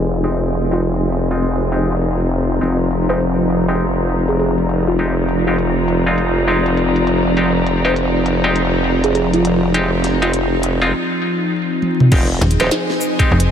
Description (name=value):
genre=glitch hop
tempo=101 BPM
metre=4/4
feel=swing 62% on 16ths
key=F dorian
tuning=A4 = 440 Hz
part: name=woody wave-folded pluck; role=melody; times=0.0-12.9 s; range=F4 to C5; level=-24 LUFS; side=right 1 dB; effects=chorus, vintage 12-bit sampler grit, ping-pong delay
part: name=warbly tape-like pad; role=sustained chords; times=0.0-13.5 s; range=F3 to Ab4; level=-20 LUFS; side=equal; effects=chorus, built-in reverb, sidechain pumping
part: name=formant-sweep wobble bass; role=bass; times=0.0-12.7 s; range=Eb1 to F1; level=-18 LUFS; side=equal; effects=chorus
part: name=warm studio string section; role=texture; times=0.0-13.5 s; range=C4 to Bb5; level=-25 LUFS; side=left 1 dB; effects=sidechain pumping
part: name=bright clav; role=stabs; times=0.2-13.4 s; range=Ab3 to G4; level=-22 LUFS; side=equal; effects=sidechain pumping, low-pass filter, ping-pong delay
part: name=glitchy drum kit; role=drums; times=0.2-13.5 s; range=crash cymbal, hi-hat, shaker, snare drum, toms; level=-19 LUFS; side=equal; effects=low-pass filter on snare, low-pass filter on hats, low-pass filter on cymbals, low-pass filter on toms, low-pass filter on perc, low-pass filter on room
part: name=electronic kick drum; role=drums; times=12.1-13.3 s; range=none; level=-15 LUFS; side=equal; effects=none
part: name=slap-like FM bass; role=bass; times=12.4-13.5 s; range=Eb1 to F1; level=-12 LUFS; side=equal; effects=none
room=moderate huge ambient reverb, RT60 7.0 s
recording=dreamy mix soaked in reverb, vinyl crackle, low-pass filter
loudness=-14 LUFS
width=side -8 dB against mid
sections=0.0-12.1 A section; 12.1-13.5 B section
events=filter sweep on drum 0.0-12.1; filter sweep on clav 0.0-12.1; filter sweep on ambient pad 0.0-12.1; filter sweep 0.0-12.1; drum fill 11.8; drop 12.1-13.5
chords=0.0 Fm7